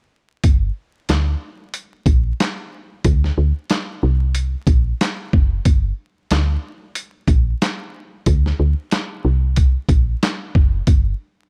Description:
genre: hip hop, boom-bap hip-hop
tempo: 92 BPM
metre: 4/4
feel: swing 58% on 16ths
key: G minor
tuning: A4 = 436 Hz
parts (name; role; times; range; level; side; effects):
- woody FM bass; bass; 0.4-11.1 s; F#1 to D2; -20 LUFS; equal; none
- dusty soul sampler-style drum kit; drums; 0.4-11.0 s; handclaps, hi-hat, kick drum, snare drum; -19 LUFS; equal; none
room: little or no reverb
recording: vinyl crackle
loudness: -19 LUFS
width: mono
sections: 0.4-11.5 A section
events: none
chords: none

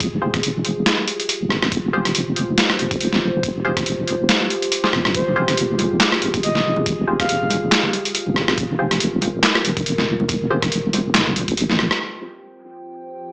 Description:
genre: deep dubstep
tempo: 140 BPM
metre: 4/4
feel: swing 56% on 16ths, half-time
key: F minor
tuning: A4 = 440 Hz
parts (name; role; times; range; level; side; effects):
- dark analog pad; sustained chords; 0.0-13.3 s; F4 to G5; -26 LUFS; equal; chorus, phaser
- deep soft wobble bass; bass; 0.0-11.9 s; F1 to Bb1; -21 LUFS; equal; chorus
- electronic kick drum; drums; 0.0-11.6 s; none; -30 LUFS; equal; none
- trip hop sampler-style drum kit; drums; 0.0-12.0 s; handclaps, hi-hat, rim click, snare drum; -18 LUFS; equal; low-pass filter on snare, low-pass filter on hats, low-pass filter on room
- filtered dub chord stab; stabs; 0.2-12.3 s; F4 to C5; -26 LUFS; left 1 dB; phaser, dub echo
- breathy flute-like synth lead; melody; 5.1-7.5 s; C5 to F5; -25 LUFS; equal; chorus, dub echo
- congas; percussion; 5.8-11.8 s; none; -29 LUFS; equal; none
room: light reverb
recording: dry, gritty hardware recording, small speaker sound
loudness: -16 LUFS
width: side -25 dB against mid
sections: 0.0-12.0 A section; 12.0-13.3 B section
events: band accent 11.9; filter sweep on synth stab 12.0-13.3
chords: 0.0 Fmadd9; 12.0 Fsus2

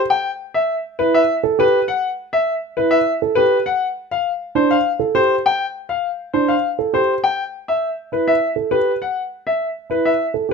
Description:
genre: classical, minimalist pattern music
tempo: 101 BPM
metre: 3/4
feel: straight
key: unclear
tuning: A4 = 440 Hz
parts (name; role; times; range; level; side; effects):
- bright concert grand piano; melody; 0.1-10.5 s; B4 to G5; -17 LUFS; left 4 dB; none
- dark grand piano; arpeggios; 1.0-10.5 s; D4 to A4; -19 LUFS; right 9 dB; none
room: light reverb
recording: close, detailed microphones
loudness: -16 LUFS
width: side -5 dB against mid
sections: 0.0-10.5 A section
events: none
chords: 0.2 Asus2; 3.8 D7sus4; 7.4 A5

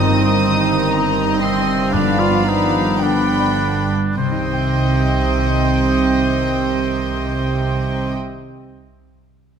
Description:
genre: classical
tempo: 50-62 BPM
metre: 4/4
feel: rubato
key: C minor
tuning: A4 = 441 Hz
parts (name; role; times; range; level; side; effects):
- warm symphonic violin section; melody; 0.0-8.1 s; G5 to Eb6; -26 LUFS; left 4 dB; none
- mellow clarinet; second line; 0.0-8.1 s; C4 to F4; -24 LUFS; equal; none
- warm oboe; second line; 0.0-8.1 s; C4 to C5; -26 LUFS; right 2 dB; none
- warm symphonic violin section; second line; 0.0-8.1 s; Eb5 to G5; -27 LUFS; left 1 dB; none
- warm symphonic viola section; accompaniment; 0.0-8.1 s; B3 to D4; -27 LUFS; right 3 dB; none
- dark trombone section; sustained chords; 0.0-8.1 s; Eb3 to C4; -25 LUFS; right 5 dB; none
- mellow French horn section; sustained chords; 0.0-8.1 s; C3 to C4; -27 LUFS; left 5 dB; none
- concert harp; arpeggios; 0.0-8.5 s; G2 to G5; -27 LUFS; left 11 dB; none
- rich symphonic cello section; bass; 0.0-8.1 s; G2 to C3; -23 LUFS; right 3 dB; none
- warm symphonic double bass section; bass; 0.0-8.1 s; G1 to C2; -22 LUFS; right 4 dB; none
- timpani; percussion; 1.9-8.1 s; G2 to C3; -29 LUFS; equal; none
room: moderate concert hall reverb, RT60 1.8 s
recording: none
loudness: -15 LUFS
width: side -7 dB against mid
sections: 0.0-4.2 A section; 4.2-8.7 B section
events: slowing down 0.0-4.2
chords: 0.0 Cm/G; 1.9 G7; 4.2 Cm

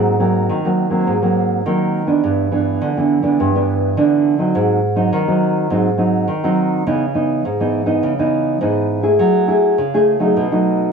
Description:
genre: samba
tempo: 103 BPM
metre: 4/4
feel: straight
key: unclear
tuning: A4 = 439 Hz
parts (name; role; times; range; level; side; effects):
- nylon-string guitar; solo; 0.0-10.9 s; G2 to G#4; -14 LUFS; right 1 dB; none
room: moderate studio reverb, RT60 0.7 s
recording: worn, warbling old tape, cassette tape, warbly pitch drift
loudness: -14 LUFS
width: side -6 dB against mid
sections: 0.0-10.9 A section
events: none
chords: 0.0 G#9; 2.2 G6; 4.6 G#7; 6.9 C#m9; 9.2 F#m9; 10.4 B7

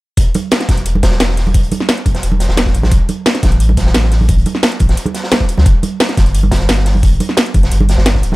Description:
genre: liquid drum and bass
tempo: 175 BPM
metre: 4/4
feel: straight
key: unclear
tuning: A4 = 438 Hz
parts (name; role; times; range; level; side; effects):
- warm sub bass; bass; 0.2-8.4 s; D1 to D2; -13 LUFS; equal; none
- drum and bass drum kit; drums; 0.2-8.3 s; hi-hat, snare drum; -16 LUFS; equal; none
- electronic kick drum; drums; 0.2-8.2 s; none; -13 LUFS; equal; none
- raw garage drum kit; drums; 0.2-8.4 s; hi-hat, snare drum; -22 LUFS; equal; high-pass filter on hats, high-pass filter on snare, high-pass filter on room
- congas; percussion; 0.4-8.4 s; none; -21 LUFS; right 4 dB; none
room: small room ambience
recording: none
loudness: -11 LUFS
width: side -20 dB against mid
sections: 0.2-8.4 A section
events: none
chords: none

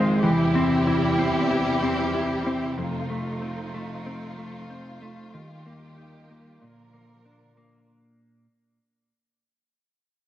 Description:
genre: dream pop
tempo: 94 BPM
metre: 4/4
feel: straight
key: unclear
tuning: A4 = 440 Hz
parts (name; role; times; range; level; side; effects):
- warm studio string section; sustained chords; 0.0-7.9 s; E2 to Bb4; -27 LUFS; right 1 dB; none
- mellow electric guitar; arpeggios; 0.0-8.5 s; F2 to E4; -25 LUFS; left 1 dB; analog chorus, tape echo
room: moderate booth ambience, RT60 0.2 s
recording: heavily compressed radio sound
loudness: -22 LUFS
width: side -12 dB against mid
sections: 0.0-7.9 A section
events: fade-out 0.0-7.9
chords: 0.2 C/E; 2.8 F7; 5.3 Ebadd9; 6.6 Bb

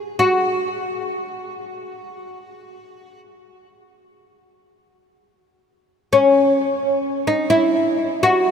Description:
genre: world meditative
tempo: free time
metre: none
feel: none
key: unclear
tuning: A4 = 439 Hz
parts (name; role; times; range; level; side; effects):
- oud; solo; 0.0-8.5 s; C#4 to G#4; -17 LUFS; left 1 dB; tape echo
room: wet huge ambient reverb, RT60 6.8 s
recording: none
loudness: -16 LUFS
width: side -7 dB against mid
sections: 0.0-8.5 A section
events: none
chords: none

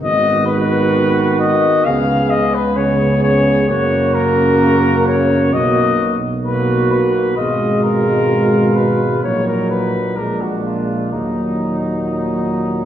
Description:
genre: classical, brass quintet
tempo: 65 BPM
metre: 4/4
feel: straight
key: Eb minor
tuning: A4 = 440 Hz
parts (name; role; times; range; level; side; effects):
- mellow cornet; melody; 0.0-12.8 s; Eb4 to F5; -18 LUFS; left 3 dB; none
- mellow trumpet; second line; 0.0-12.8 s; D4 to Ab4; -23 LUFS; right 5 dB; none
- clear French horn; accompaniment; 0.0-12.8 s; Gb3 to Cb4; -20 LUFS; equal; none
- warm trombone; accompaniment; 0.0-12.8 s; Bb2 to Eb3; -21 LUFS; right 2 dB; none
- dark tuba; bass; 0.0-12.8 s; Ab1 to Gb2; -20 LUFS; right 1 dB; none
room: wet recital hall reverb, RT60 1.7 s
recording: heard from further back in the room, lossy compression artefacts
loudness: -13 LUFS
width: side -10 dB against mid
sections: 0.0-12.8 A section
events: none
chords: 0.0 Abm7; 1.9 Db5; 3.7 Gb; 5.5 B5; 7.4 Fdim/Ab; 9.2 Ebm/Bb; 10.2 Bb7; 11.1 Ebm

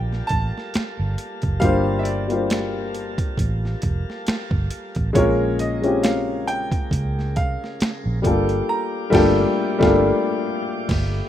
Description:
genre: R&B, neo-soul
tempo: 68 BPM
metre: 4/4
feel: swing 55% on 16ths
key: unclear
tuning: A4 = 440 Hz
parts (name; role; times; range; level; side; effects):
- dark upright piano; accompaniment; 0.0-11.3 s; G3 to C5; -20 LUFS; left 2 dB; none
- tonewheel organ; sustained chords; 0.0-11.3 s; Db3 to D5; -33 LUFS; equal; fast rotary speaker
- vintage muted fingered electric bass; bass; 0.0-11.2 s; F1 to Db2; -24 LUFS; right 1 dB; none
- boom bap sampler-style drum kit; drums; 0.1-11.2 s; crash cymbal, finger snaps, hi-hat, kick drum, snare drum; -24 LUFS; right 1 dB; overdrive
- bright grand piano; melody; 0.3-11.3 s; Db5 to Bb5; -29 LUFS; right 3 dB; none
room: light reverb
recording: rough home demo mix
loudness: -19 LUFS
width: side -11 dB against mid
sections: 0.0-11.3 A section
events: band accent 8.7-11.3; upright piano fill 10.4-11.3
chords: 0.0 Gm9; 5.2 Bbm9; 8.2 Gm9

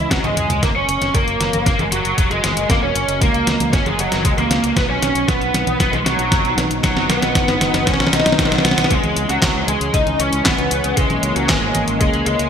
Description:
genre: italo disco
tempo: 116 BPM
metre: 4/4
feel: straight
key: C# dorian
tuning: A4 = 440 Hz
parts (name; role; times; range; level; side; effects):
- lead guitar through a small cranked amp; melody; 0.0-12.5 s; F#3 to D#5; -18 LUFS; equal; overdrive, analog chorus, ping-pong delay
- warm analog pad; sustained chords; 0.0-12.5 s; E3 to D#5; -27 LUFS; equal; chorus
- fingered electric bass; bass; 0.0-12.5 s; E1 to C#2; -25 LUFS; equal; none
- detuned 8-bit digital drum machine; drums; 0.1-12.5 s; congas, handclaps, hi-hat, snare drum, toms; -20 LUFS; equal; gated reverb
- electronic kick drum; drums; 0.1-12.1 s; none; -20 LUFS; equal; none
room: wet plate reverb, RT60 2.7 s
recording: bright 1980s-style digital production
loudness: -14 LUFS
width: side -8 dB against mid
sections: 0.6-8.9 A section; 8.9-12.5 B section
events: drum fill 0.2-0.6, 0.6-8.9; filter sweep on analog synth pad 0.6-8.9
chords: 0.0 C#madd9; 0.6 F#; 4.8 B; 8.9 C#m

